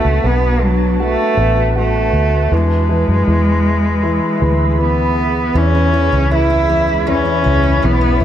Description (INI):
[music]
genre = pop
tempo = 79 BPM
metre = 4/4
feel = straight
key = unclear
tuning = A4 = 440 Hz
[part]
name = warm cello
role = melody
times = 0.0-8.2 s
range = F#3 to E4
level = -16 LUFS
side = right 1 dB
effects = none
[part]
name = clear baby grand piano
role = accompaniment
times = 0.0-8.2 s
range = E3 to F#4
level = -21 LUFS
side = equal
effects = none
[part]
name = ethereal airy pad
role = sustained chords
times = 0.0-8.2 s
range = D4 to B5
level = -23 LUFS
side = left 1 dB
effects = ensemble chorus, built-in reverb, phaser
[part]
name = vintage muted fingered electric bass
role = bass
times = 0.0-8.2 s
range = A1 to F#2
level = -16 LUFS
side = equal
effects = none
[part]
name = picked steel-string acoustic guitar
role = arpeggios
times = 5.6-8.2 s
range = E2 to E4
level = -22 LUFS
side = left 3 dB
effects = ping-pong delay
[sound]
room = light reverb, small room ambience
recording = dark, warm production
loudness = -12 LUFS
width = side -10 dB against mid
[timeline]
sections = 0.0-5.6 A section; 5.6-8.2 B section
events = none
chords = 0.0 Bm7; 2.5 E; 5.6 E6